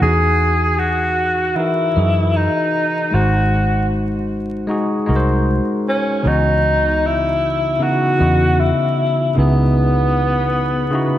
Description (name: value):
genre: lo-fi hip hop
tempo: 77 BPM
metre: 4/4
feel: swing 56% on 16ths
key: C# minor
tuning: A4 = 440 Hz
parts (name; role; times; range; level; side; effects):
- breathy tenor saxophone; melody; 0.0-11.2 s; B3 to G#4; -18 LUFS; equal; low-pass filter, diffuse ambient delay
- bell-like tine electric piano; accompaniment; 0.0-11.2 s; C#3 to D#5; -19 LUFS; left 1 dB; cassette tape, low-pass filter
- vintage muted fingered electric bass; bass; 0.0-10.9 s; G#1 to F#2; -18 LUFS; equal; none
room: moderate lush hall reverb, RT60 1.6 s, small room ambience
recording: dreamy mix soaked in reverb, vinyl crackle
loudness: -14 LUFS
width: side -12 dB against mid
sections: 0.0-11.2 A section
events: none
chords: 0.0 Emaj9; 3.1 G#7; 6.3 C#m11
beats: | 0.02 0.80 1.57 2.35 | 3.13 3.91 4.69 5.47 | 6.25 7.03 7.81 8.59 | 9.37 10.15 10.93